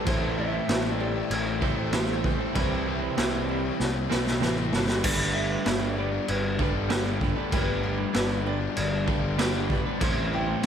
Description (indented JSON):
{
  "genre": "rock, shoegaze and dream pop",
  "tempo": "97 BPM",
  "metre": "4/4",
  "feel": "straight",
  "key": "unclear",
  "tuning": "A4 = 441 Hz",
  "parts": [
    { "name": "glassy FM pad", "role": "sustained chords", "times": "0.0-5.0 s", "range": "C4 to E6", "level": "-39 LUFS", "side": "right 1 dB", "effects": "ensemble chorus, built-in reverb" },
    { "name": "fingerpicked twelve-string acoustic guitar", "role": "arpeggios", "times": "0.0-10.7 s", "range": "G4 to D5", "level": "-40 LUFS", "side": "left 8 dB", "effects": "analog chorus, analog delay" },
    { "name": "direct-recorded clean electric guitar", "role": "riff", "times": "0.0-10.7 s", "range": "A2 to C5", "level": "-33 LUFS", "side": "right 12 dB", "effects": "reverse reverb" },
    { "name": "overdriven electric guitar", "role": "riff", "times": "0.0-10.7 s", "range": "G2 to E4", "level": "-34 LUFS", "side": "left 13 dB", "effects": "wide subtle chorus" },
    { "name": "overdriven electric guitar", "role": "riff", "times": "0.0-10.7 s", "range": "G2 to C4", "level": "-34 LUFS", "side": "equal", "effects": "none" },
    { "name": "fuzz picked electric bass", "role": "bass", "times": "0.1-10.7 s", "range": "G1 to C2", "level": "-30 LUFS", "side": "equal", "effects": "overdrive" },
    { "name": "raw garage drum kit", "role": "drums", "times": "0.1-10.7 s", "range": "crash cymbal, kick drum, snare drum", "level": "-28 LUFS", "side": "equal", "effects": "none" },
    { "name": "mellow electric guitar", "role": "melody", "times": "0.4-10.7 s", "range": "A4 to G5", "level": "-35 LUFS", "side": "equal", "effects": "analog delay" }
  ],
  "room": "studio reverb",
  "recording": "none",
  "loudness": "-24 LUFS",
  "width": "side -8 dB against mid",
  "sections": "0.0-5.0 A section; 5.0-10.7 A section",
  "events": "drum fill 3.8-5.0",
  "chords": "0.1 Am7; 2.6 Cmaj7; 5.0 Gadd9; 10.0 Am7",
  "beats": "| 0.08 0.70 1.32 1.94 | 2.56 3.18 3.80 4.42 | 5.04 5.67 6.29 6.91 | 7.53 8.15 8.77 9.39 | 10.01 10.63"
}